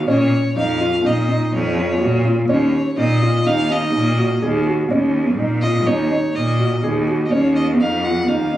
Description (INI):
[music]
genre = contemporary instrumental, chamber music in an uneven meter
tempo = 124 BPM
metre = 5/4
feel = straight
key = Eb minor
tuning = A4 = 440 Hz
[part]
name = dark violin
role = melody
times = 0.1-8.6 s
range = Db5 to Gb5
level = -24 LUFS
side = left 2 dB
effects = none
[part]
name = felt-muted upright piano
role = arpeggios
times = 0.1-8.6 s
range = Db4 to Ab4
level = -20 LUFS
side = right 1 dB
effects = none
[part]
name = clear cello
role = bass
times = 0.1-8.5 s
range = Eb2 to Bb2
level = -18 LUFS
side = equal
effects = none
[sound]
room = light reverb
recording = recorded on a phone in the room, club reverb, compression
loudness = -15 LUFS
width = side -13 dB against mid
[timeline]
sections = 0.0-4.9 A section; 4.9-8.6 B section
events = none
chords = 0.1 Bbm; 2.5 Ebm; 7.3 Eb7sus2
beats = | 0.08 0.56 1.04 1.53 2.01 | 2.49 2.98 3.46 3.94 4.42 | 4.91 5.39 5.87 6.35 6.83 | 7.32 7.80 8.28